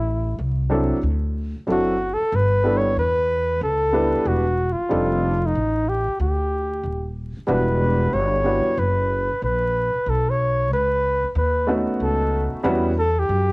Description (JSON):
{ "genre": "hip hop, jazz-hop", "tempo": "93 BPM", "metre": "4/4", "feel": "swing 65% on 16ths", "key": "E dorian", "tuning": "A4 = 440 Hz", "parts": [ { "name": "mellow flugelhorn", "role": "melody", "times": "0.0-13.5 s", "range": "Eb4 to C#5", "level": "-21 LUFS", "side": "equal", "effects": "none" }, { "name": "upright bass", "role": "bass", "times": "0.0-13.5 s", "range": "Eb1 to F#2", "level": "-23 LUFS", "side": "equal", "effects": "none" }, { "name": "dark upright piano", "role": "accompaniment", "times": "0.7-12.9 s", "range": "F#3 to B4", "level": "-22 LUFS", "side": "equal", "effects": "cassette tape, plate reverb" } ], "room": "light reverb", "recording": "home recording on cassette, vinyl crackle", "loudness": "-19 LUFS", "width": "side -26 dB against mid", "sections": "0.0-13.5 A section", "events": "none", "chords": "0.0 Am; 1.0 D9; 2.3 G69; 4.9 F13; 7.5 Em9; 10.1 B7; 12.6 Em69", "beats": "0.39 1.03 1.68 | 2.32 2.96 3.61 4.26 | 4.90 5.55 6.19 6.84 | 7.48 8.13 8.77 9.42 | 10.06 10.71 11.35 12.00 | 12.64 13.29" }